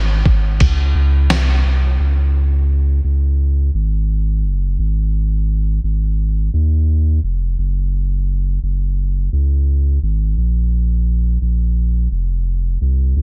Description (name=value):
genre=dream pop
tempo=86 BPM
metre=4/4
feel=straight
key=Db major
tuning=A4 = 440 Hz
part: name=warm sub bass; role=bass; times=0.0-13.2 s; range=F1 to Eb2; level=-17 LUFS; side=equal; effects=none
part: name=lo-fi sampler-style drum kit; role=drums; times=0.3-1.5 s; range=kick drum, ride cymbal, snare drum, tambourine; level=-21 LUFS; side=equal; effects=none
room=little or no reverb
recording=dense, heavily limited modern master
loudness=-17 LUFS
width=mono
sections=0.0-2.0 A section; 2.0-13.2 B section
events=none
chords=none